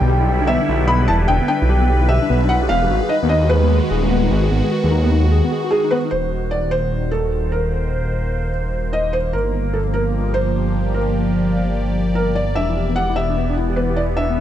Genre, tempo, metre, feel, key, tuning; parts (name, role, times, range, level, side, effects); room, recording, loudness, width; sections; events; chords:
IDM; 149 BPM; 4/4; swing 62% on 16ths; A4 = 440 Hz
felt-muted upright piano; melody; 0.0-14.4 s; Ab4 to B5; -22 LUFS; equal; tape echo
phased analog pad; sustained chords; 0.0-14.4 s; D3 to D5; -23 LUFS; equal; phaser, chorus
bright tine electric piano; arpeggios; 0.0-6.1, 12.6-14.4 s; B3 to Ab4; -23 LUFS; left 2 dB; medium stereo tremolo, vintage 12-bit sampler grit, low-pass filter, dub echo
dark detuned saw bass; bass; 0.0-14.4 s; Eb1 to Eb2; -19 LUFS; equal; tube saturation
light reverb; dark, warm production; -16 LUFS; side -11 dB against mid
0.0-6.1 A section; 6.1-14.4 B section
0.0 Em7; 2.9 Abm7; 6.1 Ebm6; 9.3 Gm7; 12.6 Em7